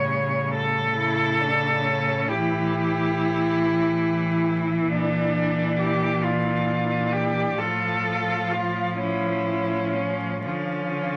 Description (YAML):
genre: classical, lyrical piece for cello ensemble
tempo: 40-47 BPM (dotted quarters)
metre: 12/8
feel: rubato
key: unclear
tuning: A4 = 444 Hz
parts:
  - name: rich cello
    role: melody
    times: 0.0-11.2 s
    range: C#4 to C#5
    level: -28 LUFS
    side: equal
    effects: none
  - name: rich cello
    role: second line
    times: 0.0-11.2 s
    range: G3 to F4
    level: -30 LUFS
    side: equal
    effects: none
  - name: rich cello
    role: accompaniment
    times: 0.0-11.2 s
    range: C#3 to F3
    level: -29 LUFS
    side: equal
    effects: none
  - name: clear cello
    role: bass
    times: 0.0-11.2 s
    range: A2 to D3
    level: -33 LUFS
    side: equal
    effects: none
room: wet studio ambience, RT60 0.5 s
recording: vinyl crackle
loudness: -24 LUFS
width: mono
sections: 0.0-11.2 A section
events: none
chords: 0.0 A7; 4.9 Bb; 7.6 F/A; 10.5 Dm